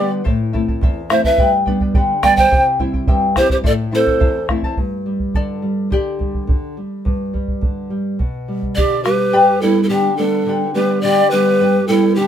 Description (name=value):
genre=andean folk, Andean ensemble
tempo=106 BPM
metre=2/4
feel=straight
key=unclear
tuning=A4 = 444 Hz
part: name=breathy pan flute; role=melody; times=0.0-4.5, 8.8-12.3 s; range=G4 to G5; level=-16 LUFS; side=equal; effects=none
part: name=mellow pan flute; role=second line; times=0.0-4.5, 8.8-12.3 s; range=D4 to D5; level=-20 LUFS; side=right 4 dB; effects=none
part: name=charango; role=accompaniment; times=0.0-6.7, 9.3-12.3 s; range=E4 to B5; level=-20 LUFS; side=left 4 dB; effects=none
part: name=nylon-string guitar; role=accompaniment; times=0.0-12.3 s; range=E2 to E4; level=-20 LUFS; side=equal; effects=none
part: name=bombo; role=percussion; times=0.3-9.2 s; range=none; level=-18 LUFS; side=right 1 dB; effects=none
room=light reverb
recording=minimal, uncompressed stereo recording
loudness=-14 LUFS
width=side -9 dB against mid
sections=0.0-4.8 A section; 4.8-9.3 B section; 9.3-12.3 C section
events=charango solo 4.8-9.3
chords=0.3 Am; 1.4 G; 2.5 C; 3.6 Am; 4.8 G